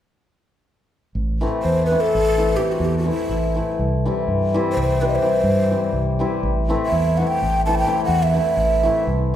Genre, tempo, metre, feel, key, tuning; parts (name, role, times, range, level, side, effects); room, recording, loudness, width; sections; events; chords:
balkan folk; free time; A minor; A4 = 437 Hz
fretless electric bass; bass; 1.1-9.4 s; A1 to G2; -22 LUFS; right 1 dB
hammered dulcimer; accompaniment; 1.4-9.4 s; E3 to E4; -22 LUFS; left 2 dB
breathy mellow ney; melody; 1.6-9.1 s; E4 to A5; -21 LUFS; right 1 dB
wet recital hall reverb, RT60 1.6 s; recorded in a church or concert hall; -17 LUFS; side -10 dB against mid
1.1-9.4 A section
1.1 Am; 3.8 C; 6.4 Am